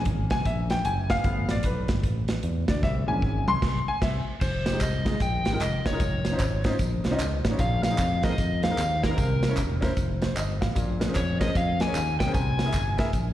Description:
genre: uptempo gospel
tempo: 152 BPM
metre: 4/4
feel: swing 64% on 8ths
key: F minor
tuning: A4 = 442 Hz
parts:
  - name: warm grand piano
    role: accompaniment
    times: 0.0-13.1 s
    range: Bb2 to C6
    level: -30 LUFS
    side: left 1 dB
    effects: slapback echo
  - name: fingered electric bass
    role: bass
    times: 0.0-13.3 s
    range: E1 to F2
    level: -28 LUFS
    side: equal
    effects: none
  - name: modern studio drum kit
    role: drums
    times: 0.1-13.2 s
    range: crash cymbal, hi-hat, kick drum, snare drum, toms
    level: -28 LUFS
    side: equal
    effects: none
  - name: overdriven slide guitar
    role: melody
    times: 4.4-13.1 s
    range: Bb4 to Ab5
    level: -30 LUFS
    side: left 1 dB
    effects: slapback echo
  - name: tambourine and handclaps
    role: percussion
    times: 4.4-13.2 s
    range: none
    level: -38 LUFS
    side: right 2 dB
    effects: slapback echo
room: studio ambience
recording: live gig heard through the venue's PA, recital hall reverb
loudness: -23 LUFS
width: side -13 dB against mid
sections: 0.0-4.4 A section; 4.4-13.3 B section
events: grand piano solo 0.0-4.4; drum fill 2.8-4.4; band accent 3.6-4.4; grand piano fill 13.1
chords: 0.0 C7b9b13 (rootless); 1.2 G9; 2.8 C7b9b13; 4.4 Fm9; 6.0 Dbmaj9/F; 7.6 Bb9sus4; 9.2 C7b9; 10.0 F; 10.8 Bbm9; 12.3 C7b13

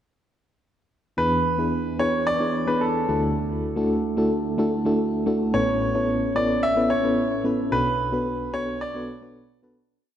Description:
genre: pop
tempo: 110 BPM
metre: 4/4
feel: straight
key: E mixolydian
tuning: A4 = 441 Hz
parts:
  - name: bright grand piano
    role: melody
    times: 1.2-9.6 s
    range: A4 to E5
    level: -24 LUFS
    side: equal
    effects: tape echo
  - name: FM electric piano with tremolo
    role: accompaniment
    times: 1.2-9.9 s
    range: A1 to C#5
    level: -23 LUFS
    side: equal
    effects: none
room: wet plate reverb, RT60 2.5 s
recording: dreamy mix soaked in reverb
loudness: -21 LUFS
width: side -10 dB against mid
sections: 1.2-9.9 chorus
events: fade-out 7.7-9.9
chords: 1.2 E7; 3.1 Dadd9; 5.5 Aadd9; 7.7 Bm7

